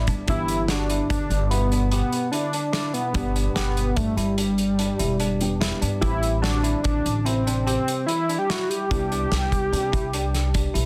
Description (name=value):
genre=progressive instrumental, band music in an uneven meter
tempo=146 BPM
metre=7/4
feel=straight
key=G major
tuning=A4 = 440 Hz
part: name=dark grand piano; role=accompaniment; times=0.0-10.9 s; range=G3 to D5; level=-38 LUFS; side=equal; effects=none
part: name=barky tine electric piano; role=arpeggios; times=0.0-10.9 s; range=D4 to G4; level=-35 LUFS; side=equal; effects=none
part: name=upright bass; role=bass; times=0.0-10.9 s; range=E1 to C3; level=-27 LUFS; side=equal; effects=none
part: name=loose indie drum kit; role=drums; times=0.1-10.9 s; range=hi-hat, kick drum, snare drum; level=-30 LUFS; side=equal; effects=none
part: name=unison lead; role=melody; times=0.3-10.9 s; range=G3 to G4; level=-27 LUFS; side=equal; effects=none
room=moderate studio reverb, RT60 0.8 s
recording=dense, heavily limited modern master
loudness=-23 LUFS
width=mono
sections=0.3-10.9 A section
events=grand piano fill 0.0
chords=0.3 G; 6.0 Am7; 8.9 Cmaj7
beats=| 0.29 0.70 1.11 1.51 1.93 2.33 2.74 | 3.15 3.56 3.97 4.38 4.79 5.21 5.62 | 6.03 6.44 6.85 7.26 7.67 8.08 8.49 | 8.91 9.32 9.73 10.14 10.55